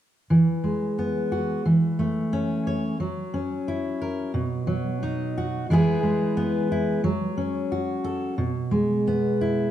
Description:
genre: folk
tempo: 89 BPM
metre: 4/4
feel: straight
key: E major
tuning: A4 = 440 Hz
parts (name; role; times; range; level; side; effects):
- fingerpicked steel-string acoustic guitar; accompaniment; 0.3-9.7 s; B2 to C#5; -22 LUFS; equal; none
room: wet large studio reverb, RT60 1.2 s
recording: dark, warm production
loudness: -22 LUFS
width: side -11 dB against mid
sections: 0.3-9.7 A section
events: none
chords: 0.3 Eadd9; 1.7 A/E; 3.0 F#7; 4.4 B; 5.7 E; 7.0 F#m; 8.4 E/B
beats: | 0.30 0.98 1.66 2.33 | 3.01 3.68 4.35 5.02 | 5.69 6.36 7.03 7.71 | 8.38 9.05

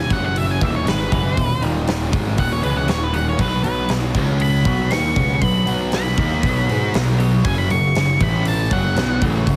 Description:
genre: quiet-loud alternative rock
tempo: 118 BPM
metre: 4/4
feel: straight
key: unclear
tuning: A4 = 442 Hz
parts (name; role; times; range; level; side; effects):
- octave-fuzz lead guitar; melody; 0.0-9.2 s; B4 to Db6; -26 LUFS; equal; distortion, digital delay
- biting overdriven guitar; riff; 0.0-9.6 s; Eb2 to Ab4; -27 LUFS; equal; none
- fuzz picked electric bass; bass; 0.0-9.6 s; Eb1 to Ab2; -24 LUFS; equal; overdrive
- huge arena drum kit; drums; 0.1-9.6 s; hi-hat, kick drum, snare drum; -25 LUFS; equal; none
- twangy electric guitar; arpeggios; 0.6-9.6 s; Eb2 to Cb4; -27 LUFS; equal; phaser
- thick fuzz guitar; riff; 3.4-9.6 s; Gb2 to Ab4; -26 LUFS; equal; none
room: light reverb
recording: heavily compressed radio sound, multiband compression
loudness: -19 LUFS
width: mono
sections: 0.0-9.6 A section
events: lead electric guitar solo 0.0-9.6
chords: 0.1 Gb5; 0.6 E5; 1.6 Eb5; 2.1 E5; 2.9 Eb5; 3.4 Cb5; 4.2 Db5; 4.7 Cb5; 7.4 Gb5; 8.2 A5; 8.7 Gb5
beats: 0.36 0.86 | 1.37 1.87 2.38 2.89 | 3.39 3.90 4.41 4.91 | 5.42 5.93 6.43 6.94 | 7.45 7.95 8.46 8.97 | 9.47

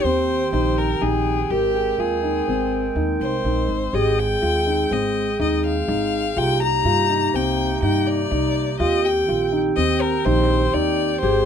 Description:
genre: contemporary instrumental, chamber music in an uneven meter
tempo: 123 BPM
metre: 5/4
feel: straight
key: unclear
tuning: A4 = 439 Hz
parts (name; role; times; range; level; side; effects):
- clear violin; melody; 0.0-11.5 s; G4 to Bb5; -24 LUFS; left 5 dB; none
- vibraphone with medium mallets; second line; 0.0-11.5 s; G4 to Bb4; -24 LUFS; right 5 dB; none
- clear woodwind section; sustained chords; 0.0-11.5 s; C3 to G5; -29 LUFS; right 2 dB; none
- felt-muted upright piano; arpeggios; 0.0-11.4 s; C4 to Ab4; -24 LUFS; left 4 dB; none
- upright bass; bass; 0.0-11.5 s; Ab1 to G2; -25 LUFS; right 1 dB; none
room: light reverb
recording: dark, warm production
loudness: -18 LUFS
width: side -8 dB against mid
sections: 0.0-11.5 A section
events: none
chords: 0.0 Cm7; 1.5 Abmaj7; 6.4 Cm7; 8.8 Eb6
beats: 0.04 0.53 1.02 | 1.50 1.99 2.48 2.96 3.45 | 3.94 4.42 4.91 5.39 5.88 | 6.37 6.85 7.34 7.83 8.31 | 8.80 9.29 9.77 10.26 10.74 | 11.23

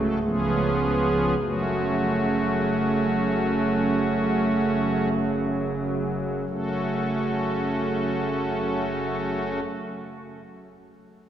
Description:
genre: classical, chorale-style piece for pipe organ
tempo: free time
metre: none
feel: none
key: F# minor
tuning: A4 = 439 Hz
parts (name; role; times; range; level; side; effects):
- pipe organ, strings celeste; solo; 0.0-9.6 s; C#1 to A4; -22 LUFS; right 1 dB; none
room: wet church reverb, RT60 3.7 s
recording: small room ambience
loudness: -22 LUFS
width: side -10 dB against mid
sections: 0.0-6.5 A section; 6.5-11.3 B section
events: slowing down 0.0-6.5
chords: 0.2 C#7; 1.4 F#m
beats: free time

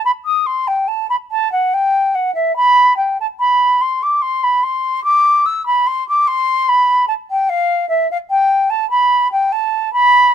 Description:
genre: classical, baroque-style fantasia for unaccompanied flute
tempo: 73 BPM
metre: 3/4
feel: rubato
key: unclear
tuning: A4 = 440 Hz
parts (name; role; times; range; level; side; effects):
- silver concert flute; solo; 0.0-10.3 s; E5 to E6; -12 LUFS; equal; none
room: light reverb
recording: close, detailed microphones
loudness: -13 LUFS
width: side -9 dB against mid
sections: 0.0-10.3 A section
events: none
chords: none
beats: | 0.04 0.88 1.72 | 2.56 3.39 4.21 | 5.04 5.86 6.67 | 7.48 8.30 9.12 | 9.93

